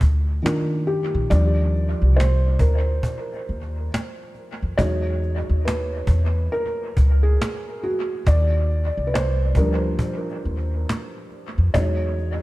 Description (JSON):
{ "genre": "lo-fi hip hop", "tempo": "69 BPM", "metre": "4/4", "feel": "swing 61% on 16ths", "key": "unclear", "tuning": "A4 = 440 Hz", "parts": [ { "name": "felt-muted upright piano", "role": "accompaniment", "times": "0.0-12.4 s", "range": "Eb3 to D5", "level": "-25 LUFS", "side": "equal", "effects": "cassette tape, low-pass filter, dub echo" }, { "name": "upright bass", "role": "bass", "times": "0.0-12.4 s", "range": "Bb1 to F2", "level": "-19 LUFS", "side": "equal", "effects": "none" }, { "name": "cajon", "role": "drums", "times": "0.0-12.3 s", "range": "none", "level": "-28 LUFS", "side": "equal", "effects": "dub echo" } ], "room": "light reverb, small room ambience", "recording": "echo-heavy mix", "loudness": "-19 LUFS", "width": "side -18 dB against mid", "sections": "0.0-1.3 A section; 1.3-12.4 B section", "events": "felt piano solo 1.3-12.4", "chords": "0.0 Ebmaj9; 4.8 Emaj9; 8.3 Ebmaj9; 11.7 Emaj9" }